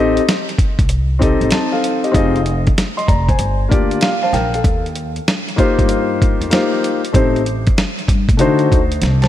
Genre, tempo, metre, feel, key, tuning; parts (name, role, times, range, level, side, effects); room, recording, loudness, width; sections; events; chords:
hip hop, jazz-hop; 96 BPM; 4/4; swing 66% on 16ths; A4 = 440 Hz
dark grand piano; accompaniment; 0.0-9.3 s; A3 to C6; -17 LUFS; left 2 dB
upright bass; bass; 0.0-9.3 s; F1 to D3; -19 LUFS; equal
dusty soul sampler-style drum kit; drums; 0.2-9.3 s; hi-hat, kick drum, snare drum; -16 LUFS; equal
light reverb, small room ambience; -13 LUFS; side -12 dB against mid
0.0-9.3 A section
grand piano fill 3.4-4.6; drum fill 9.0
0.0 Am7b5; 2.1 Fm7; 3.4 Gm7; 4.6 Eb69; 7.1 Am7b5; 8.4 D7b9